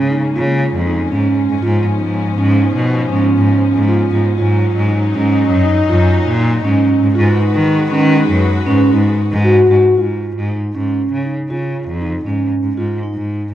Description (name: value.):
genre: contemporary instrumental, chamber music in an uneven meter.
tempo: 237 BPM (eighths).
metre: 11/8.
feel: straight.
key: unclear.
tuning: A4 = 439 Hz.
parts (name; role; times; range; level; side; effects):
warm studio string section; sustained chords; 0.0-9.9 s; E#3 to B4; -21 LUFS; left 4 dB; none.
rich cello; bass; 0.0-13.5 s; E#2 to D#3; -15 LUFS; equal; none.
vibraphone with soft mallets; arpeggios; 0.1-13.4 s; C#4 to F#4; -16 LUFS; right 2 dB; none.
room: light reverb.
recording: dark, warm production.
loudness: -12 LUFS.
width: side -12 dB against mid.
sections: 0.0-10.0 A section; 10.0-13.5 B section.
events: none.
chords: 0.0 A#m7; 1.6 C#7/G#; 4.4 D#m7; 7.2 G#m7; 10.0 C#add9; 12.8 C#/G# (rootless).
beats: 0.11 0.36 0.62 0.87 1.12 1.38 | 1.63 1.88 2.13 2.38 2.63 2.88 3.13 3.38 3.63 3.89 4.14 | 4.39 4.64 4.89 5.14 5.39 5.64 5.89 6.15 6.40 6.65 6.90 | 7.15 7.40 7.66 7.91 8.16 8.42 8.68 8.93 9.19 9.45 9.71 | 9.97 10.23 10.49 10.74 11.00 11.25 11.50 11.76 12.01 12.26 12.52 | 12.77 13.02 13.28.